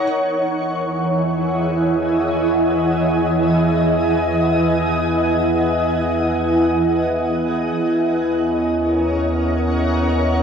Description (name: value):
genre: ambient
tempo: free time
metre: none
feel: none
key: E lydian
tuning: A4 = 444 Hz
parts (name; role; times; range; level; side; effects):
- shimmering ambient pad; sustained chords; 0.0-10.4 s; E3 to F#5; -17 LUFS; equal; chorus, built-in reverb
- warm sub bass; bass; 0.0-10.4 s; D#2 to E2; -27 LUFS; equal; none
- analog drone; drone; 0.0-10.4 s; D#3 to E4; -22 LUFS; equal; chorus
room: wet studio reverb, RT60 0.5 s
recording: home recording on cassette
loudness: -16 LUFS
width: side -6 dB against mid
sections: 0.0-10.4 A section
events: fade-in on sub bass 0.0-10.4; fade-in on synth drone 0.0-10.4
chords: 0.0 Emaj9; 7.8 D#m7